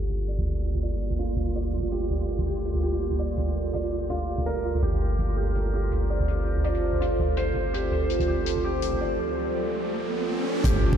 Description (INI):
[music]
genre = half-time drum and bass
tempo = 165 BPM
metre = 4/4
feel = swing 57% on 16ths, half-time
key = G minor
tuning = A4 = 441 Hz
[part]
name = deep dark ambient pad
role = sustained chords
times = 0.0-11.0 s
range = Bb3 to C5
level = -30 LUFS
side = right 2 dB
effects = chorus, built-in reverb, sidechain pumping
[part]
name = felt-muted upright piano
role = arpeggios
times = 0.0-11.0 s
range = F4 to D5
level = -32 LUFS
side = left 1 dB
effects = lush chorus, low-pass filter, ping-pong delay
[part]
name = long sustained 808-style bass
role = bass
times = 0.0-11.0 s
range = G1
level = -29 LUFS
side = equal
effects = tube saturation
[part]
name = pulsing gated texture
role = texture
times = 0.0-9.2 s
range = F4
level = -36 LUFS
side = right 2 dB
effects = chorus, built-in reverb
[part]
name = soft-mallet drum kit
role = drums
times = 0.1-10.9 s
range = hi-hat, toms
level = -29 LUFS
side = right 1 dB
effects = none
[part]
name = riser and impact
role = sound effects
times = 8.7-11.0 s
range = none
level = -31 LUFS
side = equal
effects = none
[part]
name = electronic kick drum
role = drums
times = 10.6-11.0 s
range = none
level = -23 LUFS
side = equal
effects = none
[sound]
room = moderate huge ambient reverb, RT60 8.1 s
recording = dreamy mix soaked in reverb, low-pass filter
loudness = -24 LUFS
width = side -8 dB against mid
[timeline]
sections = 0.0-10.6 A section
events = filter sweep on ambient pad 0.0-10.6; filter sweep on felt piano 0.0-10.6; filter sweep 0.0-10.6; riser 8.7-10.6; impact 10.6-11.0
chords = 0.0 Gmadd9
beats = 0.10 | 0.46 0.83 1.19 1.55 | 1.92 2.28 2.64 3.01 | 3.37 3.73 4.10 4.46 | 4.83 5.19 5.55 5.92 | 6.28 6.64 7.01 7.37 | 7.74 8.10 8.46 8.83 | 9.19 9.55 9.92 10.28 | 10.64